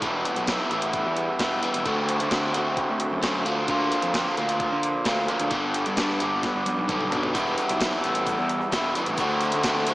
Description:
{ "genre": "indie rock", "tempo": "131 BPM", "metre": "4/4", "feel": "straight", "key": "unclear", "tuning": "A4 = 440 Hz", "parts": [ { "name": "crunchy overdriven guitar", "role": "riff", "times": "0.0-9.9 s", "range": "G2 to F#4", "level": "-23 LUFS", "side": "equal", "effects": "slapback echo" }, { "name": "fuzz picked electric bass", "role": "bass", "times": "0.0-9.9 s", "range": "E1 to D3", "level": "-30 LUFS", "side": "equal", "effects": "overdrive" }, { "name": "clean 12-bit digital drum machine", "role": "drums", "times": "0.0-9.9 s", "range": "hi-hat, kick drum, snare drum, toms", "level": "-30 LUFS", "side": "equal", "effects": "none" }, { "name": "tube shaker", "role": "percussion", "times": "7.4-9.9 s", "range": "none", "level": "-48 LUFS", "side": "right 2 dB", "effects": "none" } ], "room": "wet lush hall reverb, RT60 2.2 s", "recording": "big arena sound, small speaker sound", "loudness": "-22 LUFS", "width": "side -18 dB against mid", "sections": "0.0-9.9 A section", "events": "drum fill 6.4-7.4", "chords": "0.0 Em; 1.9 D7; 3.5 Bb/D; 5.5 G; 7.4 Em; 9.2 D7" }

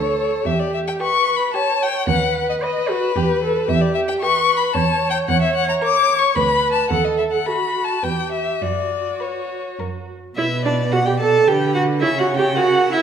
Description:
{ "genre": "quick classical-period movement for string quartet", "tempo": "110 BPM", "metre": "3/4", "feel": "rubato", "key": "B minor from 3.7 s", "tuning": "A4 = 437 Hz", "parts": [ { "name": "warm violin", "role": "melody", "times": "0.0-13.0 s", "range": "A#4 to D6", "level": "-20 LUFS", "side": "left 6 dB", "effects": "none" }, { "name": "rich violin", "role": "second line", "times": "0.0-13.0 s", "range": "G4 to A5", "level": "-25 LUFS", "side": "equal", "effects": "none" }, { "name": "rich viola", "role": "accompaniment", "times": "0.0-13.0 s", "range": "D4 to D#5", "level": "-21 LUFS", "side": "right 4 dB", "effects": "none" }, { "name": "rich cello", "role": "bass", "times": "0.0-13.0 s", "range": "D2 to D3", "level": "-23 LUFS", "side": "right 4 dB", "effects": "none" } ], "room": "wet recital hall reverb, RT60 1.6 s", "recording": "minimal, uncompressed stereo recording", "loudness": "-16 LUFS", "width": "side -8 dB against mid", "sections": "0.0-10.4 A section; 10.4-13.0 B section", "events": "none", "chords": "0.5 Em; 2.1 B/D#; 3.2 Em; 4.8 A/E; 6.4 Bm/D; 6.9 D#dim; 8.0 Em; 8.6 F#sus4; 10.4 Bm; 12.0 F#7" }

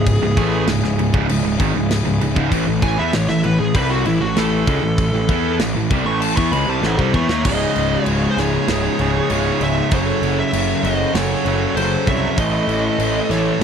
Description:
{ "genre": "heavy metal", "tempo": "97 BPM", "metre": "4/4", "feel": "straight", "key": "C# harmonic minor", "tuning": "A4 = 439 Hz", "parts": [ { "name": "high-gain lead guitar", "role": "melody", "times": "0.0-13.6 s", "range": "E4 to C#6", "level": "-23 LUFS", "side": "equal", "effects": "distortion" }, { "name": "dark brass ensemble", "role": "sustained chords", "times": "0.0-13.6 s", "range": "A2 to A4", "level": "-31 LUFS", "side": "left 1 dB", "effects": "none" }, { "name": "distorted electric guitar", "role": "riff", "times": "0.0-13.6 s", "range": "C#2 to E4", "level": "-25 LUFS", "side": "equal", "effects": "overdrive" }, { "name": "heavy high-gain guitar", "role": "riff", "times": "0.0-13.6 s", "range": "C#2 to E4", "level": "-23 LUFS", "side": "right 12 dB", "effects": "distortion" }, { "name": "sludgy distorted guitar", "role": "riff", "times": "0.0-13.6 s", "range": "C#2 to E4", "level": "-23 LUFS", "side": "left 11 dB", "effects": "overdrive" }, { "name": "fuzz picked electric bass", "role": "bass", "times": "0.0-13.6 s", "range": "C#1 to E2", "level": "-22 LUFS", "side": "equal", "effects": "overdrive" }, { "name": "tight metal drum kit", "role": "drums", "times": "0.1-13.6 s", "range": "crash cymbal, kick drum, snare drum", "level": "-24 LUFS", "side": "equal", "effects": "none" }, { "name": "high-gain lead guitar", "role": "second line", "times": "6.9-13.6 s", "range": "G#4 to C#5", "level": "-27 LUFS", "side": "right 4 dB", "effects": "distortion" } ], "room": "light reverb", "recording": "dark, warm production", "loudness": "-15 LUFS", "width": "side -7 dB against mid", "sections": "0.0-7.4 A section; 7.4-13.6 B section", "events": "lead electric guitar solo 0.0-7.4; drum fill 6.8-7.4; half time 7.4-13.6", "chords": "0.0 C#m; 2.5 A5; 7.4 C#m; 9.9 F#m; 12.4 A" }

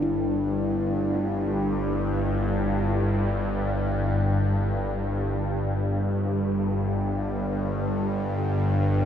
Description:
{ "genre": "dark ambient drone", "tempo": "free time", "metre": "none", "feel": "none", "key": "unclear", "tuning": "A4 = 442 Hz", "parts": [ { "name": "warm concert grand piano", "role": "arpeggios", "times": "0.0-1.3 s", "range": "none", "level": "barely audible", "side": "none", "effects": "none" }, { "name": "bowed-like drone", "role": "drone", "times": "0.0-9.1 s", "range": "G1 to G2", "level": "-24 LUFS", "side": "equal", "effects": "built-in reverb, phaser" }, { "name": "bronze singing bowl", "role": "texture", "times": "0.0-9.1 s", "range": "E4", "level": "-34 LUFS", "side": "equal", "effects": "stereo widening" } ], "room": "wet huge ambient reverb, RT60 7.9 s", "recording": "in a vast, echoing space", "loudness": "-23 LUFS", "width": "side -9 dB against mid", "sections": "0.0-9.1 A section", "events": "none", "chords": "0.0 Em/G" }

